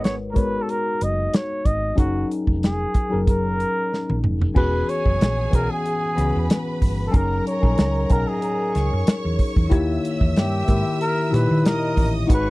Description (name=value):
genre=lush 1970s-style soul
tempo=93 BPM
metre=4/4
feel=swing 54% on 16ths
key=F# major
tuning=A4 = 440 Hz
part: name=breathy flugelhorn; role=melody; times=0.0-12.5 s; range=F#4 to D#5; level=-25 LUFS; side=equal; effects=none
part: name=tine electric piano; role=accompaniment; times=0.0-12.5 s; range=A#2 to E5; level=-25 LUFS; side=left 3 dB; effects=phaser
part: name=hollow-body short-scale fingered electric bass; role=bass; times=0.0-12.5 s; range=E1 to D#3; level=-23 LUFS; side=equal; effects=none
part: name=warm soul drum kit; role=drums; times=0.0-12.5 s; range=crash cymbal, hi-hat, kick drum, snare drum, toms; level=-19 LUFS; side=equal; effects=none
part: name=warm symphonic violin section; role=second line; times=4.6-12.5 s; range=G#4 to E6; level=-32 LUFS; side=right 2 dB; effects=none
room=little or no reverb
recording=dry, close 1970s-style studio recording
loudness=-18 LUFS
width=side -20 dB against mid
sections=0.0-4.6 A section; 4.6-12.5 B section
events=drum fill 3.9-4.6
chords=0.0 G#m11; 2.0 F#69; 4.6 E69; 7.1 F#6; 9.7 D#7b9